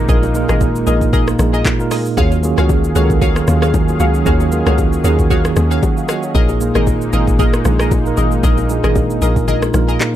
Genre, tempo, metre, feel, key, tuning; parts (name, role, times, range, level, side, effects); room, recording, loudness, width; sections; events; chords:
amapiano; 115 BPM; 4/4; swing 55% on 16ths; Eb minor; A4 = 441 Hz
mellow tine electric piano; accompaniment; 0.0-10.2 s; Bb2 to Gb5; -17 LUFS; right 3 dB; medium stereo tremolo
warm analog pad; sustained chords; 0.0-10.2 s; Eb3 to F5; -24 LUFS; left 1 dB; chorus
hollow log drum bass; bass; 0.0-10.0 s; Ab1 to Eb2; -17 LUFS; equal
punchy chord stab; stabs; 0.1-10.0 s; Gb4 to F5; -22 LUFS; left 2 dB; chorus, phaser, digital delay
afro-pop drum kit; drums; 0.1-10.1 s; handclaps, hi-hat, kick drum, rim click, shaker; -18 LUFS; equal; overdrive
congas and bongos; percussion; 0.1-10.1 s; -25 LUFS; left 7 dB
little or no reverb; dark, warm production; -12 LUFS; side -12 dB against mid
0.0-10.2 A section
kick muted 9.5-10.2
0.0 Bb7sus4; 2.2 Ebm11; 6.3 Bb7sus4